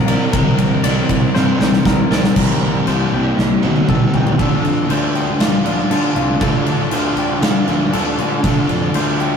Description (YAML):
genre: rock, shoegaze and dream pop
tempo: 118 BPM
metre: 4/4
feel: straight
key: D minor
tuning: A4 = 439 Hz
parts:
  - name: direct-recorded clean electric guitar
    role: arpeggios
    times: 0.0-9.4 s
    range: F4 to D5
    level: -26 LUFS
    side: left 7 dB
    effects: none
  - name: overdriven semi-hollow guitar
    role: riff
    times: 0.0-9.4 s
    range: C3 to Bb4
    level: -19 LUFS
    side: right 3 dB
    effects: none
  - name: thick fuzz guitar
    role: riff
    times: 0.0-9.4 s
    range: C3 to D4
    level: -22 LUFS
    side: left 5 dB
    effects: distortion
  - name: fuzz fingered electric bass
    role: bass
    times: 0.0-9.4 s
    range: Bb1 to D3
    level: -24 LUFS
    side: equal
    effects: overdrive
  - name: huge arena drum kit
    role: drums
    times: 0.1-9.3 s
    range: crash cymbal, kick drum, ride cymbal, snare drum, toms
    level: -17 LUFS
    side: equal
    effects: none
room: moderate booth ambience, RT60 0.2 s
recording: rough rehearsal-room recording, warm saturation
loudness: -13 LUFS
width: side -6 dB against mid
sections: 0.0-2.4 A section; 2.4-4.4 B section; 4.4-9.4 C section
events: drum fill 1.4-2.4, 3.4-4.4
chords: 0.0 C5; 4.4 Dm7